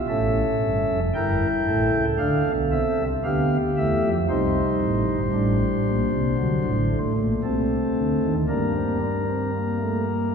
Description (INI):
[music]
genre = classical, baroque-style 4-part fugue for pipe organ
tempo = 57 BPM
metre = 4/4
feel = straight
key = D minor, G minor from 4.3 s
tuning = A4 = 440 Hz
[part]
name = pipe organ, flutes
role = solo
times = 0.0-10.3 s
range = F1 to G5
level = -20 LUFS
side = equal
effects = none
[sound]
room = wet church reverb, RT60 2.8 s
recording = heard from further back in the room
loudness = -20 LUFS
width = side -6 dB against mid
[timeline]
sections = 0.0-10.3 A section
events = none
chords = 0.1 A7; 2.2 Dm; 4.3 Am7b5; 6.4 D7; 8.5 Gm